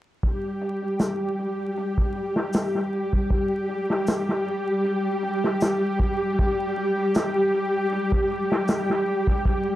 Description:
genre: trip hop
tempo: 78 BPM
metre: 4/4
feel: straight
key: unclear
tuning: A4 = 440 Hz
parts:
  - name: string machine, cellos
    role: sustained chords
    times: 0.2-9.8 s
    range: G4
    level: -25 LUFS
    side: equal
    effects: ensemble chorus, vintage 12-bit sampler grit
  - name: unplugged drum kit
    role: drums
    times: 0.2-9.7 s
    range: hi-hat, kick drum, snare drum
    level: -24 LUFS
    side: equal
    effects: low-pass filter on kick, low-pass filter on hats, low-pass filter on snare, low-pass filter on room
  - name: flickering grainy texture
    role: texture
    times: 0.7-9.8 s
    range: G3 to G4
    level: -30 LUFS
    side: left 1 dB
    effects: built-in reverb
  - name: tube shaker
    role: percussion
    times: 1.0-8.9 s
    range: none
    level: -42 LUFS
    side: equal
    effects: none
room: small room ambience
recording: dry, gritty hardware recording, transformer saturation, vinyl crackle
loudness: -22 LUFS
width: side -14 dB against mid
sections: 0.2-9.8 A section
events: none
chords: none

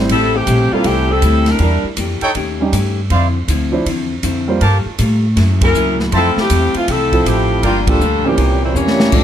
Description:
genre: jazz, big band swing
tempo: 159 BPM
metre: 4/4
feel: swing 65% on 8ths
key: F major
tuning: A4 = 439 Hz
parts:
  - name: warm grand piano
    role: accompaniment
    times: 0.0-8.4 s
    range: E3 to C5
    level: -19 LUFS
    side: right 3 dB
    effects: none
  - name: upright bass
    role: bass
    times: 0.0-9.2 s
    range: G1 to A2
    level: -16 LUFS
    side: equal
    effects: none
  - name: warm saxophone section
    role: melody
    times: 0.1-1.9, 5.6-9.2 s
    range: E3 to D5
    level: -16 LUFS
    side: left 2 dB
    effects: none
  - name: vintage hollow-body jazz guitar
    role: accompaniment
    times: 0.1-9.2 s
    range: F2 to A4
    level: -23 LUFS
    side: left 4 dB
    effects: none
  - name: swinging big-band drum kit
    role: drums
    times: 0.1-9.2 s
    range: crash cymbal, hi-hat, kick drum, ride cymbal, snare drum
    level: -21 LUFS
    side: equal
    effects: none
  - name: clear trumpet section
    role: stabs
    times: 2.2-7.8 s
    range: Eb4 to A5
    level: -19 LUFS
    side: right 2 dB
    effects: none
  - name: clear trombone section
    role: second line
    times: 8.3-9.2 s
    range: Bb2 to D4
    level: -18 LUFS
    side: right 3 dB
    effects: none
room: light reverb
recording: close, detailed microphones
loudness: -12 LUFS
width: side -10 dB against mid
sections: 0.0-9.1 A section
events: band accent 5.6, 7.8; drum fill 8.8-9.1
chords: 0.1 Am7; 1.6 Em7b5; 2.4 Eb7#11; 3.1 Dm9; 4.6 Gm9; 5.4 Gb9; 6.1 Fmaj7; 7.6 Gm7; 8.4 C7b9

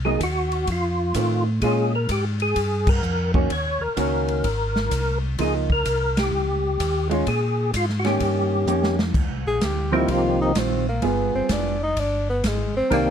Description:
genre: soul jazz organ trio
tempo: 128 BPM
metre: 4/4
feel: swing 66% on 8ths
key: Eb major from 9.1 s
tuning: A4 = 440 Hz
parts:
  - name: percussive tonewheel organ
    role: melody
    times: 0.0-13.1 s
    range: Eb3 to Db5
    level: -24 LUFS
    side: left 1 dB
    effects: slow rotary speaker, chorus vibrato
  - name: mellow tonewheel organ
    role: bass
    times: 0.0-13.1 s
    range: F1 to Bb2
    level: -25 LUFS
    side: equal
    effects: slow rotary speaker
  - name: vintage hollow-body jazz guitar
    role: accompaniment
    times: 0.1-13.1 s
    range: Eb3 to Ab4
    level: -25 LUFS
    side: right 3 dB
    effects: none
  - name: swinging big-band drum kit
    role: drums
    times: 0.2-13.1 s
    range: crash cymbal, hi-hat, kick drum, ride cymbal, snare drum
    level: -27 LUFS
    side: equal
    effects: none
  - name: breathy tenor saxophone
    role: melody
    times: 9.5-13.1 s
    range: Ab3 to Ab4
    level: -24 LUFS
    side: equal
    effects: none
room: light reverb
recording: dark, warm production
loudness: -20 LUFS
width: side -8 dB against mid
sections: 0.0-9.1 A section; 9.1-13.1 B section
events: band accent 2.8, 6.1; drum fill 8.7-9.1; tenor saxophone solo 9.1-13.1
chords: 0.0 Cm7b5; 0.7 F7; 1.6 Bbm7; 3.5 Ebm7; 4.4 Ab; 5.4 Db69; 7.3 Bbm7; 8.2 Eb7; 9.1 Eb69; 11.0 G7b9

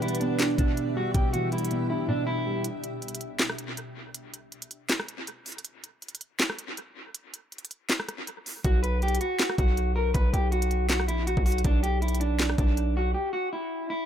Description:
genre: hip hop, trap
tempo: 160 BPM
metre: 4/4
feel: half-time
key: unclear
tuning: A4 = 440 Hz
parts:
  - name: electric guitar at the edge of break-up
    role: melody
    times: 0.0-2.6, 8.6-14.0 s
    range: D4 to B4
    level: -29 LUFS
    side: right 1 dB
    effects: dub echo
  - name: dark concert grand piano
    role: accompaniment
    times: 0.0-2.7 s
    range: B2 to D4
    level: -29 LUFS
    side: right 1 dB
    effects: none
  - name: granular cloud pad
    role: sustained chords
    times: 0.0-2.6 s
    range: B2 to E5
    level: -35 LUFS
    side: left 2 dB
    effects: built-in reverb
  - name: trap drum kit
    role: drums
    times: 0.0-12.9 s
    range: handclaps, hi-hat, kick drum, rim click, snare drum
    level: -27 LUFS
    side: equal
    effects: dub echo
  - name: distorted 808-style bass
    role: bass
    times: 8.6-13.1 s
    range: A#1 to B1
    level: -26 LUFS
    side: equal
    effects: distortion
room: little or no reverb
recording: echo-heavy mix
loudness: -24 LUFS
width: side -10 dB against mid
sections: 0.0-2.6 A section; 2.6-14.1 B section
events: break 2.6-8.6, 13.1-14.1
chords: 0.0 Em7/B; 2.6 N.C.; 8.6 B5; 11.6 E5/B

